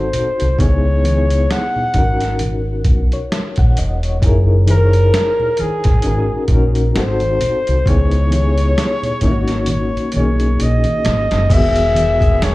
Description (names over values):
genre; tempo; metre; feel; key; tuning
R&B, neo-soul; 66 BPM; 4/4; swing 57% on 16ths; unclear; A4 = 441 Hz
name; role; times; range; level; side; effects
warm flugelhorn; melody; 0.0-12.5 s; G#4 to F#5; -19 LUFS; left 1 dB; slapback echo
bright reed electric piano; accompaniment; 0.0-12.5 s; D#3 to F#5; -22 LUFS; left 2 dB; tremolo, slapback echo
deep dub fingered electric bass; bass; 0.0-12.5 s; E1 to C#2; -16 LUFS; equal; none
boom bap sampler-style drum kit; drums; 0.1-12.5 s; crash cymbal, hi-hat, kick drum, snare drum; -18 LUFS; equal; none
congas; percussion; 0.1-12.2 s; none; -27 LUFS; right 1 dB; none
warm horn section; stabs; 11.5-12.5 s; D#3 to G#4; -24 LUFS; left 2 dB; slapback echo
room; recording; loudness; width
little or no reverb; live gig heard through the venue's PA, club reverb; -13 LUFS; side -18 dB against mid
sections
0.0-11.5 A section; 11.5-12.5 B section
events
drum fill 9.7-11.5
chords
0.0 G#7b9; 0.6 C#m9; 1.9 G#9sus4; 4.2 F#13; 6.0 G#9sus4; 7.0 G#7b9; 7.9 C#m9; 9.2 G#7sus4; 11.5 Emaj9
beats
| 0.59 1.50 2.40 3.31 | 4.22 5.13 6.04 6.95 | 7.86 8.77 9.68 10.59 | 11.50 12.40